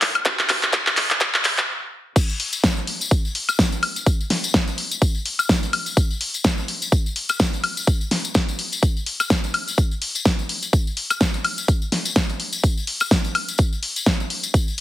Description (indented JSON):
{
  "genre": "house",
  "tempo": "126 BPM",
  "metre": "4/4",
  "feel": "swing 57% on 16ths",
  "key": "none",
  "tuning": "none",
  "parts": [
    { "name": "big-room dance drum kit", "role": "drums", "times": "0.0-14.8 s", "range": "crash cymbal, handclaps, hi-hat, snare drum, woodblock", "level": "-21 LUFS", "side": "equal", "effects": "none" },
    { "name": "electronic kick drum", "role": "drums", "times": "0.3-14.6 s", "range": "none", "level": "-20 LUFS", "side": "equal", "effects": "high-pass filter on kick" },
    { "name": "tambourine", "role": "percussion", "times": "2.2-14.8 s", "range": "none", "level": "-28 LUFS", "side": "left 4 dB", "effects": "none" }
  ],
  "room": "moderate digital room reverb, RT60 1.0 s",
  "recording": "heavily compressed radio sound, high-pass filter",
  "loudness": "-19 LUFS",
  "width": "side -14 dB against mid",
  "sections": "0.0-2.2 A section; 2.2-14.8 B section",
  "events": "build-up 0.0-2.2; drum fill 0.0-1.7; stop 1.7-2.2; drop 2.2-14.8",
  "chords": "none"
}